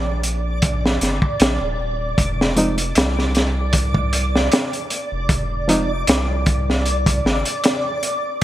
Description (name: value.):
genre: trip hop.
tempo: 77 BPM.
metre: 4/4.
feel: swing 54% on 16ths.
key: F dorian.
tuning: A4 = 438 Hz.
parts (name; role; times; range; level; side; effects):
round analog bass; bass; 0.0-7.4 s; Eb1 to C2; -22 LUFS; equal; none.
backwards swelling texture; texture; 0.0-8.4 s; D5; -25 LUFS; equal; built-in reverb, ensemble chorus.
crunchy breakbeat drum kit; drums; 0.2-8.4 s; hi-hat, kick drum, snare drum; -19 LUFS; equal; none.
reed electric piano; accompaniment; 2.6-5.9 s; F3 to Eb4; -22 LUFS; right 1 dB; tremolo, tape echo.
room: light reverb, small room ambience.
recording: bright 1980s-style digital production, vinyl crackle.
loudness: -17 LUFS.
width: side -13 dB against mid.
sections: 0.0-8.4 A section.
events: none.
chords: 0.0 Ebmaj7(no3); 2.2 F5.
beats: 0.63 1.41 | 2.19 2.96 3.74 4.52 | 5.30 6.08 6.86 7.64 | 8.42.